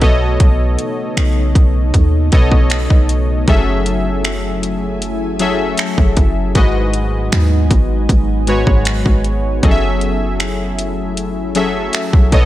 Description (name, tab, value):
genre	contemporary R&B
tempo	78 BPM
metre	4/4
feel	straight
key	F# dorian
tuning	A4 = 440 Hz
part	warm analog keys	accompaniment	0.0-12.5 s	G#2 to E5	-18 LUFS	left 2 dB	chorus
part	ethereal airy pad	sustained chords	0.0-12.5 s	C#3 to G#5	-24 LUFS	equal	ensemble chorus, built-in reverb, sidechain pumping
part	clean 808-style bass	bass	0.0-12.5 s	F#1 to D#2	-16 LUFS	equal	none
part	trap drum kit	drums	0.0-12.5 s	finger snaps, hi-hat, kick drum	-14 LUFS	equal	vintage 12-bit sampler grit
room	little or no reverb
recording	faint mains hum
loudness	-12 LUFS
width	side -14 dB against mid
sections	0.0-12.5 A section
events	none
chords	0.0 B9; 3.5 F#m9; 6.6 G#m7; 9.6 F#m9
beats	| 0.40 1.17 1.94 2.71 | 3.48 4.25 5.02 5.79 | 6.55 7.32 8.09 8.86 | 9.63 10.40 11.17 11.94